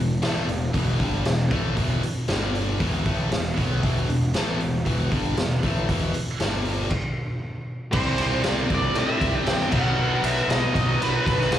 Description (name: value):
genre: hard rock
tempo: 117 BPM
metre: 4/4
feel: straight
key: E minor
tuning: A4 = 442 Hz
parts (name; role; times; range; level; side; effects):
- distorted electric guitar; riff; 0.0-11.6 s; E2 to C4; -29 LUFS; left 8 dB; overdrive
- heavy high-gain guitar; riff; 0.0-11.6 s; E2 to C4; -31 LUFS; right 8 dB; distortion
- fuzz picked electric bass; bass; 0.0-11.6 s; E1 to A2; -27 LUFS; equal; overdrive
- raw garage drum kit; drums; 0.2-11.6 s; crash cymbal, hi-hat, kick drum, ride cymbal, snare drum; -25 LUFS; equal; none
- high-gain lead guitar; melody; 7.9-11.6 s; B4 to G5; -27 LUFS; right 1 dB; distortion, slapback echo
- dark analog pad; sustained chords; 8.7-11.6 s; B3 to D5; -37 LUFS; right 1 dB; none
- tight distorted guitar; riff; 7.9-11.6 s; B2 to G4; -30 LUFS; right 1 dB; distortion, slapback echo
room: light reverb, small room ambience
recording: live gig heard through the venue's PA, club reverb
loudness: -21 LUFS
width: side -11 dB against mid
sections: 0.0-7.9 A section; 7.9-11.6 B section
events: stop 6.9-7.9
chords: 0.0 Em; 2.3 G5; 2.8 Em; 6.4 G5; 6.9 N.C.; 7.9 C; 9.7 B